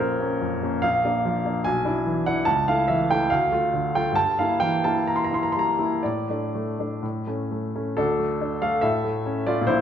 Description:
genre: classical, romantic character piece for solo piano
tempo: 59-75 BPM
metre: 2/4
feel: rubato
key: D minor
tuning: A4 = 440 Hz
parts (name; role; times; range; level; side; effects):
- clear baby grand piano; solo; 0.0-9.8 s; Bb1 to C6; -21 LUFS; equal; none
room: wet recital hall reverb, RT60 1.3 s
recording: minimal, uncompressed stereo recording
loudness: -21 LUFS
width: side -9 dB against mid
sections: 0.0-8.0 A section; 8.0-9.8 B section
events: none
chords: 0.0 Bbm; 0.8 Bb; 1.7 E7/B; 2.5 A/C#; 3.3 Dm; 4.2 Edim/G; 6.0 D5/A; 7.0 A; 8.0 D5; 8.8 A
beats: 0.00 | 0.82 1.66 | 2.48 3.31 | 4.16 5.06 | 6.03 7.03 | 7.98 8.84 | 9.68

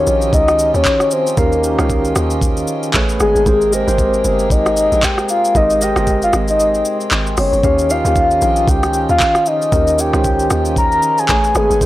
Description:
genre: amapiano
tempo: 115 BPM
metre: 4/4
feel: swing 58% on 16ths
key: Ab major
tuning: A4 = 440 Hz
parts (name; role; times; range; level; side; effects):
- soft octave-layered synth lead; melody; 0.0-11.9 s; G#4 to Bb5; -15 LUFS; left 1 dB; chorus, tremolo, tape echo
- tine electric piano; accompaniment; 0.0-11.9 s; Eb3 to G5; -21 LUFS; right 2 dB; medium tremolo
- pedal harmonium; sustained chords; 0.0-11.9 s; C3 to G5; -25 LUFS; left 1 dB; stereo widening, sidechain pumping
- hollow log drum bass; bass; 0.0-11.9 s; G1 to Eb2; -20 LUFS; equal; none
- afro-pop drum kit; drums; 0.1-11.9 s; handclaps, hi-hat, kick drum, rim click, shaker; -18 LUFS; equal; none
room: digital ambience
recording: dry, gritty hardware recording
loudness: -12 LUFS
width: side -15 dB against mid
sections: 0.0-11.9 A section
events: kick muted 6.6-7.6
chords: 0.0 Eb9; 2.9 Amaj9; 3.5 Abmaj9; 7.6 Eb9; 11.3 Amaj9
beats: 0.33 0.85 | 1.38 1.90 2.42 2.94 | 3.46 3.98 4.51 5.03 | 5.55 6.07 6.59 7.12 | 7.64 8.16 8.68 9.20 | 9.72 10.25 10.77 11.29 | 11.81

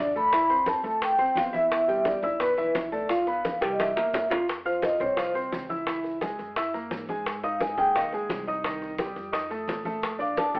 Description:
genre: Afro-Cuban jazz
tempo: 173 BPM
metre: 4/4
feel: straight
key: F minor from 4.5 s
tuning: A4 = 439 Hz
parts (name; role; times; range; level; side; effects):
- vibraphone with soft mallets; melody; 0.0-5.4, 7.4-8.1, 10.2-10.6 s; B4 to B5; -24 LUFS; equal; none
- warm grand piano; accompaniment; 0.0-10.6 s; Eb3 to F6; -29 LUFS; right 1 dB; none
- upright bass; bass; 0.0-10.6 s; Bb1 to Bb2; -43 LUFS; equal; none
- maracas; percussion; 0.2-10.6 s; none; -48 LUFS; right 1 dB; none
- bongos; percussion; 0.3-10.6 s; none; -32 LUFS; left 1 dB; none
- congas; percussion; 0.3-10.6 s; none; -38 LUFS; equal; none
room: moderate large studio reverb, RT60 0.9 s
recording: telephone sound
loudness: -24 LUFS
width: side -25 dB against mid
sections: 0.0-4.5 A section; 4.5-10.6 B section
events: drum fill 3.4-4.5; vibraphone solo 4.5-10.6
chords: 0.3 F#m7b5; 1.0 F; 1.7 Em7; 3.1 G7/B; 3.8 C7; 4.5 F5; 5.9 Dbm; 6.6 Gb9; 7.3 Ab; 8.6 Cmadd11; 9.3 F7; 10.0 Bbmaj7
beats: | 0.32 0.67 1.02 1.36 | 1.71 2.06 2.40 2.75 | 3.10 3.44 3.79 4.14 | 4.49 4.83 5.18 5.53 | 5.87 6.22 6.57 6.91 | 7.26 7.61 7.95 8.30 | 8.65 8.99 9.34 9.69 | 10.03 10.38

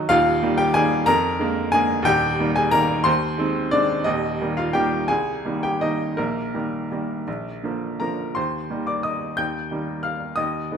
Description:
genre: classical, romantic character piece for solo piano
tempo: 54-62 BPM (dotted quarters)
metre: 6/8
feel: rubato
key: Eb major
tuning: A4 = 440 Hz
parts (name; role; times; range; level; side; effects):
- bright upright piano; solo; 0.0-10.8 s; Eb1 to G6; -20 LUFS; equal; none
room: moderate recital hall reverb, RT60 1.4 s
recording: minimal, uncompressed stereo recording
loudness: -20 LUFS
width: side -7 dB against mid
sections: 0.0-8.4 A section; 8.4-10.8 B section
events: none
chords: 0.1 Eb; 1.1 Bb7/F; 2.1 Eb; 3.1 Ab/Eb; 4.1 Eb; 5.1 Cm7; 6.2 Eb/Bb; 7.3 Bb; 8.4 Eb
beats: | 0.10 1.07 | 2.06 3.05 | 4.06 5.09 | 6.18 7.27 | 8.36 9.38 | 10.37

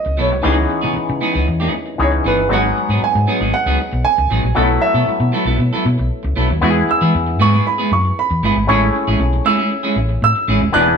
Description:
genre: disco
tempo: 117 BPM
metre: 4/4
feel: straight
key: E major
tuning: A4 = 440 Hz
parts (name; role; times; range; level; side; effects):
- warm baby grand piano; melody; 0.0-11.0 s; B4 to F#6; -18 LUFS; right 3 dB; none
- auto-wah clav; accompaniment; 0.0-11.0 s; E3 to D5; -21 LUFS; left 3 dB; overdrive
- clean electric guitar; accompaniment; 0.0-10.9 s; E3 to A4; -20 LUFS; right 2 dB; none
- hollow-body short-scale fingered electric bass; bass; 0.1-10.9 s; D#1 to E3; -18 LUFS; left 1 dB; none
room: moderate stone room reverb, RT60 1.0 s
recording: band playing live in one room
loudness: -14 LUFS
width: side -6 dB against mid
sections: 0.0-6.6 A section; 6.6-11.0 B section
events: none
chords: 0.4 C#m9; 2.5 G#m7; 4.6 B7sus4; 6.6 E; 8.7 Amaj7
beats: | 0.45 0.96 1.48 1.99 | 2.51 3.02 3.54 4.05 | 4.57 5.08 5.60 6.11 | 6.62 7.14 7.65 8.17 | 8.68 9.20 9.71 10.22 | 10.74

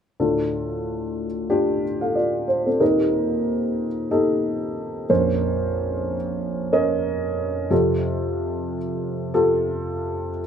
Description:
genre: pop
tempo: 92 BPM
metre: 4/4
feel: swing 56% on 16ths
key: unclear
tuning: A4 = 444 Hz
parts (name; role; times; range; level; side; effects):
- dark upright piano; accompaniment; 0.2-10.5 s; Bb1 to F5; -20 LUFS; equal; none
room: moderate studio ambience, RT60 0.5 s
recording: band playing live in one room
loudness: -20 LUFS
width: side -8 dB against mid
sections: 0.2-10.5 A section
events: none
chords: 0.2 Dm; 2.8 Eb; 5.1 Bbmadd9; 7.7 Fadd9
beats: | 0.19 0.85 1.50 2.15 | 2.81 3.46 4.12 4.77 | 5.42 6.08 6.73 7.38 | 8.04 8.69 9.34 10.00

